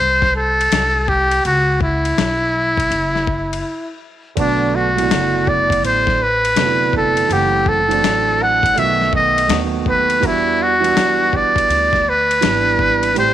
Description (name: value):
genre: hip hop, jazz-hop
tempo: 82 BPM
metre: 4/4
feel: swing 64% on 16ths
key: unclear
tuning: A4 = 439 Hz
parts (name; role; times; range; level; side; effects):
- trumpet with metal mute; melody; 0.0-13.3 s; D4 to F#5; -15 LUFS; equal; none
- upright bass; bass; 0.0-13.3 s; F1 to E2; -24 LUFS; equal; none
- dusty soul sampler-style drum kit; drums; 0.2-13.3 s; hi-hat, kick drum, ride cymbal, snare drum; -23 LUFS; left 4 dB; overdrive
- dark baby grand piano; accompaniment; 4.4-13.3 s; B2 to F#5; -21 LUFS; right 10 dB; none
room: moderate spring reverb, RT60 2.3 s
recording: 1960s-style stereo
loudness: -13 LUFS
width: side -11 dB against mid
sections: 0.0-13.3 A section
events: break 3.6-4.4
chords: 0.0 Bbmaj7sus2 (rootless); 1.4 C#m7; 2.9 Esus2/F#; 4.4 Bm7; 7.3 F#m7b5; 8.8 B7; 10.2 Em9